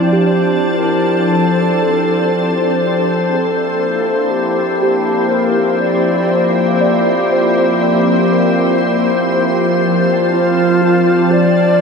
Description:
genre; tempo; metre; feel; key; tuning
ambient; 60 BPM; 3/4; straight; unclear; A4 = 440 Hz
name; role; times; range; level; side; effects
bright reedy alto flute; melody; 0.0-11.8 s; F4 to D5; -20 LUFS; right 1 dB; diffuse ambient delay
soft additive organ-like pad; sustained chords; 0.0-11.8 s; F3 to A5; -14 LUFS; left 1 dB; ensemble chorus, built-in reverb
muted felt-like synth keys; arpeggios; 0.0-11.8 s; E4 to D5; -19 LUFS; equal; chorus, diffuse ambient delay
analog drone; drone; 4.5-11.8 s; F3; -21 LUFS; right 1 dB; chorus
room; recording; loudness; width
wet huge ambient reverb, RT60 8.7 s; cassette tape; -12 LUFS; side -5 dB against mid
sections
0.0-11.8 A section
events
fade-in on alto flute 0.0-11.8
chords
0.0 F6; 3.3 C9/F

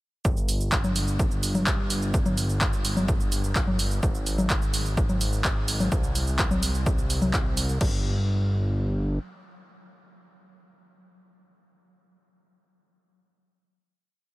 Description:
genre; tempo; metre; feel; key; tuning
melodic techno; 127 BPM; 4/4; straight; unclear; A4 = 441 Hz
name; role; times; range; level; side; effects
fat analog bass; bass; 0.2-9.2 s; G1 to C2; -27 LUFS; equal; tube saturation, sidechain pumping
electronic kick drum; drums; 0.2-7.9 s; none; -26 LUFS; equal; none
punchy analog drum machine; drums; 0.2-7.9 s; congas, crash cymbal, handclaps, hi-hat, shaker; -28 LUFS; equal; none
room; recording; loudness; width
light reverb; none; -22 LUFS; side -19 dB against mid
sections
0.2-7.8 drop; 7.8-11.6 final note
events
drop 0.2-7.8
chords
none

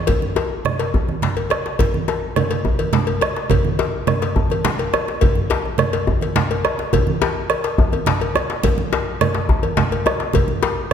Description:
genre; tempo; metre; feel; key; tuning
west african traditional, West African drum ensemble; 140 BPM (dotted quarters); 12/8; straight; none; none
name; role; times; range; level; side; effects
bombo; percussion; 0.1-10.5 s; none; -22 LUFS; right 1 dB; none
congas; percussion; 0.1-10.6 s; none; -22 LUFS; right 5 dB; none
cowbell; percussion; 0.1-10.8 s; none; -24 LUFS; left 6 dB; none
djembe; percussion; 0.1-10.8 s; none; -23 LUFS; left 5 dB; none
room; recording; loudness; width
wet scoring stage reverb, RT60 1.7 s; none; -17 LUFS; side -8 dB against mid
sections
0.1-10.9 A section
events
none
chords
none

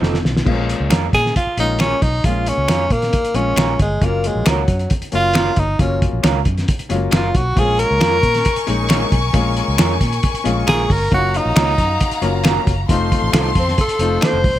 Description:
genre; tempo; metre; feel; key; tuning
uptempo 1960s-style soul; 135 BPM; 4/4; straight; Bb minor; A4 = 440 Hz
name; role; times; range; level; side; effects
clear grand piano; accompaniment; 0.0-14.5 s; F3 to F4; -24 LUFS; left 5 dB; none
electric guitar through a small old amp; stabs; 0.0-14.4 s; F3 to Bb4; -25 LUFS; right 9 dB; lush chorus
vintage muted fingered electric bass; bass; 0.0-14.6 s; F1 to Bb2; -21 LUFS; equal; none
cloth-damped thuddy drum kit; drums; 0.0-14.5 s; crash cymbal, hi-hat, kick drum, snare drum; -18 LUFS; equal; none
finger snaps; percussion; 0.9-14.3 s; none; -24 LUFS; left 3 dB; none
breathy tenor saxophone; melody; 1.1-14.6 s; Gb3 to C5; -18 LUFS; equal; none
dark studio violin section; second line; 7.6-14.6 s; Gb4 to Db6; -23 LUFS; left 3 dB; none
room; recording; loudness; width
small room ambience; none; -14 LUFS; side -13 dB against mid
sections
0.5-14.6 A section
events
drum fill 0.0-0.5; tenor saxophone solo 0.5-14.6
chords
0.5 Bbm7; 4.0 Gbmaj7; 7.6 Bbm7; 11.1 Gbmaj7; 12.9 F7

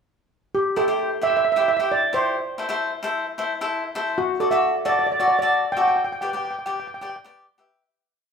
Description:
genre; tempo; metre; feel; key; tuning
calypso; 132 BPM; 4/4; straight; C major; A4 = 438 Hz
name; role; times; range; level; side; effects
steel pan; melody; 0.5-7.2 s; F#4 to G5; -22 LUFS; right 2 dB; none
cavaquinho; accompaniment; 0.8-7.8 s; E4 to E5; -23 LUFS; left 2 dB; none
room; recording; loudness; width
wet large studio reverb, RT60 1.2 s; band playing live in one room; -20 LUFS; side -6 dB against mid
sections
0.5-7.8 verse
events
fade-out 6.0-7.8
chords
0.5 C; 2.4 Am; 4.2 D; 6.0 G

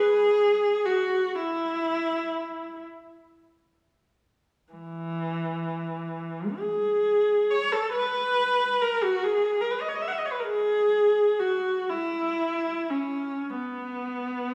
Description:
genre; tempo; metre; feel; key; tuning
classical, free, expressive piece for unaccompanied viola; 24-49 BPM (dotted quarters); 6/8; rubato; unclear; A4 = 441 Hz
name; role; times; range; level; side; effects
rich viola; solo; 0.0-14.5 s; E3 to F#5; -26 LUFS; equal; none
room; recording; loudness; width
wet recital hall reverb, RT60 1.6 s; recorded in a church or concert hall; -26 LUFS; mono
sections
0.0-14.5 A section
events
none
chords
none

